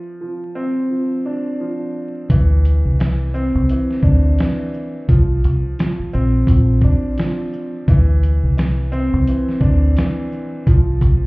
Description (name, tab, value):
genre	hip hop, boom-bap hip-hop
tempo	86 BPM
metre	4/4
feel	swing 57% on 16ths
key	D minor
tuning	A4 = 440 Hz
part	dark upright piano	accompaniment	0.0-11.3 s	E3 to D4	-21 LUFS	equal	cassette tape, high-pass filter, low-pass filter
part	deep dub fingered electric bass	bass	2.3-11.2 s	Bb1 to D2	-15 LUFS	equal	none
part	dusty soul sampler-style drum kit	drums	2.3-11.2 s	hi-hat, kick drum, shaker, snare drum	-16 LUFS	equal	none
room	little or no reverb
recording	heard muffled through a wall, club reverb, vinyl crackle, EQ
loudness	-15 LUFS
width	side -24 dB against mid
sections	0.0-2.3 A section; 2.3-11.3 B section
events	none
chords	0.0 Csus24; 2.3 Dsus2; 5.1 C9sus4; 7.9 Dsus2; 10.7 Csus4